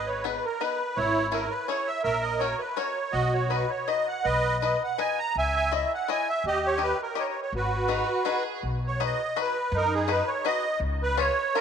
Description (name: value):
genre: musette waltz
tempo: 165 BPM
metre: 3/4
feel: swing 53% on 8ths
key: G# minor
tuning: A4 = 440 Hz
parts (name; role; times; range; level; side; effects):
- musette accordion; melody; 0.0-11.6 s; D#4 to A#5; -26 LUFS; right 3 dB; tape echo
- upright bass; bass; 0.0-11.3 s; G#1 to F#2; -31 LUFS; left 1 dB; none
- bluegrass banjo; accompaniment; 0.2-11.6 s; B3 to D#5; -32 LUFS; left 12 dB; none
- clear violin; second line; 7.9-8.6 s; D#4 to G#4; -43 LUFS; right 7 dB; none
room: moderate plate reverb, RT60 3.4 s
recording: 1960s-style stereo with parts hard left and right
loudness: -24 LUFS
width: side -7 dB against mid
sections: 0.0-8.6 A section; 8.6-11.6 B section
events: none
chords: 0.0 G#m; 1.0 C#m/G#; 2.1 F#/A#; 3.1 B; 4.2 G#m/B; 5.4 C#madd9; 6.4 D#; 7.5 G#m7; 8.6 B6; 10.8 C#7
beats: 0.25 0.61 | 0.97 1.34 1.70 | 2.06 2.42 2.78 | 3.15 3.51 3.88 | 4.25 4.62 4.99 | 5.35 5.72 6.08 | 6.44 6.80 7.16 | 7.52 7.89 8.26 | 8.63 8.99 9.36 | 9.72 10.09 10.45 | 10.81 11.18 11.54